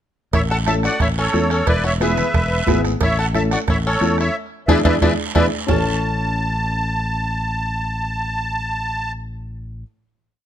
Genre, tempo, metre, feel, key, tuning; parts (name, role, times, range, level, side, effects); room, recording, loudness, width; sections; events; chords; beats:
latin, cumbia; 179 BPM; 4/4; straight; A major; A4 = 445 Hz
musette accordion; melody; 0.3-9.1 s; A4 to A5; -22 LUFS; equal
bluegrass banjo; second line; 0.3-9.8 s; C#4 to A4; -26 LUFS; left 3 dB; tape echo
fingered electric bass; bass; 0.3-9.8 s; E1 to E2; -23 LUFS; equal
bombo; percussion; 0.3-5.8 s; -22 LUFS; right 2 dB
congas; percussion; 0.3-5.8 s; -28 LUFS; right 4 dB
cowbell and timbales; percussion; 0.3-5.8 s; -28 LUFS; right 8 dB
guiro; percussion; 0.3-5.8 s; -32 LUFS; right 7 dB
dark upright piano; accompaniment; 0.7-9.8 s; B3 to A4; -23 LUFS; left 4 dB
light reverb; close, detailed microphones; -17 LUFS; side -10 dB against mid
0.3-5.7 groove; 5.7-8.4 final chord
band accent 4.3-5.7; drum fill 4.7-5.7
0.3 A; 1.7 E; 3.0 A; 4.3 E7; 5.7 A
| 0.34 0.67 1.00 1.34 | 1.67 2.01 2.34 2.68 | 3.01 3.35 3.68 4.01 | 4.35 4.68 5.02 5.36 | 5.69 6.02 6.36 6.69 | 7.03 7.36 7.70 8.03